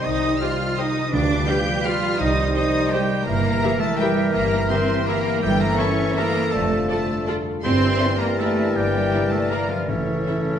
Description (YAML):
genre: classical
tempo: 165 BPM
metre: 3/4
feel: uneven beats, rubato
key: unclear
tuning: A4 = 440 Hz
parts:
  - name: rich studio violin section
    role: melody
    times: 0.0-10.6 s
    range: C#5 to G6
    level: -30 LUFS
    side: left 2 dB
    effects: none
  - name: clear clarinet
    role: second line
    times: 0.0-10.6 s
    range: A4 to C5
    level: -31 LUFS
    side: left 1 dB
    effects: none
  - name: clear oboe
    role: second line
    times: 0.0-10.6 s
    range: C#4 to G5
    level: -29 LUFS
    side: right 1 dB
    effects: none
  - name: mellow hollow silver concert flute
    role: second line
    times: 0.0-10.6 s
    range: D5 to F5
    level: -30 LUFS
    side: left 1 dB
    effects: none
  - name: mellow bassoon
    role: accompaniment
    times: 0.0-10.6 s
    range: E3 to G3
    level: -30 LUFS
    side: right 2 dB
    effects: none
  - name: dark French horn section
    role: sustained chords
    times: 0.0-10.6 s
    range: E4 to C5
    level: -28 LUFS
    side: left 4 dB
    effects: none
  - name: dark trombone section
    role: sustained chords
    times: 0.0-10.6 s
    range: D3 to Bb3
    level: -30 LUFS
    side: right 3 dB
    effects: none
  - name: concert harp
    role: arpeggios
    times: 0.0-10.6 s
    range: F2 to F4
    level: -29 LUFS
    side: left 7 dB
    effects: none
  - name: rich symphonic cello section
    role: bass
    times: 0.0-10.6 s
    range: C#3 to G4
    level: -25 LUFS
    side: right 2 dB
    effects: none
  - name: rich symphonic double bass section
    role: bass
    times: 0.0-10.2 s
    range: F1 to D2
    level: -28 LUFS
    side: right 3 dB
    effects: none
  - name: rich symphonic violin section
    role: second line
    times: 0.4-10.4 s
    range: A4 to G5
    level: -35 LUFS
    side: left 3 dB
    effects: none
  - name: rich symphonic viola section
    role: accompaniment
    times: 0.4-10.4 s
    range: E4 to Bb4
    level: -34 LUFS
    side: right 1 dB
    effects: none
  - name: timpani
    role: percussion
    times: 1.1-1.6, 9.9-10.4 s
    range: A2 to D3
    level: -29 LUFS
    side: equal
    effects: none
room: wet recital hall reverb, RT60 1.4 s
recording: nothing above 10.9 kHz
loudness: -18 LUFS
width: side -8 dB against mid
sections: 0.0-10.6 A section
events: none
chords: 0.0 Cm; 1.1 G7/D; 2.2 Cm; 3.3 Edim/G; 5.4 A7/G; 6.5 Dm/F; 7.6 Em7b5/G; 9.9 A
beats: | 0.04 0.41 0.78 | 1.13 1.48 1.84 | 2.19 2.55 2.92 | 3.27 3.62 3.99 | 4.34 4.69 5.07 | 5.43 5.79 6.17 | 6.53 6.90 7.29 | 7.65 8.01 8.40 | 8.76 9.12 9.51 | 9.89 10.28